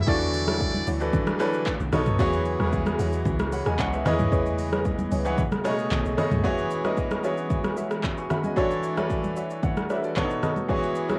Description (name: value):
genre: amapiano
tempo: 113 BPM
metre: 4/4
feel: straight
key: E major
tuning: A4 = 440 Hz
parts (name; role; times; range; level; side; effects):
- trumpet with metal mute; melody; 0.0-0.9 s; D5 to E5; -34 LUFS; equal; cassette tape
- bright concert grand piano; accompaniment; 0.0-11.2 s; B2 to C#6; -29 LUFS; equal; cassette tape
- hollow soft pad; sustained chords; 0.0-11.2 s; C#3 to D#5; -39 LUFS; equal; none
- deep log drum bass; bass; 0.0-6.4 s; B1 to E2; -32 LUFS; equal; none
- deep mellow chord stab; stabs; 0.1-11.2 s; D#4 to C#6; -35 LUFS; equal; chorus, cassette tape, analog delay
- deep house drum kit; drums; 0.1-11.2 s; handclaps, hi-hat, kick drum, rim click, shaker, toms; -31 LUFS; equal; overdrive, cassette tape
- congas; percussion; 0.5-11.2 s; none; -34 LUFS; equal; none
room: light reverb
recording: home recording on cassette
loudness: -25 LUFS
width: mono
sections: 0.0-6.4 A section; 6.4-11.2 B section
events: drop 0.0-6.4; grand piano fill 9.9-10.7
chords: 0.1 Dmaj9/E; 1.7 B7; 2.2 E69; 4.1 Amaj9#11/E; 5.4 B13; 6.4 E69; 8.6 Dmaj9/E; 10.2 B7